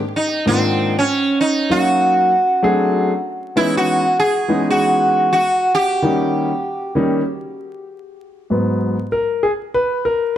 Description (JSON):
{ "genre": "hip hop", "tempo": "97 BPM", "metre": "4/4", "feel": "swing 65% on 16ths", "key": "G# minor", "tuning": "A4 = 439 Hz", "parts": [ { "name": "sitar", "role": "melody", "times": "0.2-7.9 s", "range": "B#3 to G#4", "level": "-17 LUFS", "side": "right 1 dB", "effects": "none" }, { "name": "warm concert grand piano", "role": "accompaniment", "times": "0.5-10.3 s", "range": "G#2 to E#5", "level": "-18 LUFS", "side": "left 1 dB", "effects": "none" } ], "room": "moderate echo chamber reverb, RT60 1.4 s, small room ambience", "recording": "dark, warm production, vinyl crackle", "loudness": "-15 LUFS", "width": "side -11 dB against mid", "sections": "0.0-8.5 A section; 8.5-10.4 B section", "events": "grand piano solo 8.5-10.4", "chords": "0.0 G#add9(#11); 1.1 D#m7; 2.3 D7#11; 3.6 C#m7; 6.0 D#7; 8.5 G#m7", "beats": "0.46 | 1.08 1.70 2.32 2.94 | 3.56 4.17 4.79 5.41 | 6.03 6.65 7.27 7.89 | 8.51 9.12 9.74" }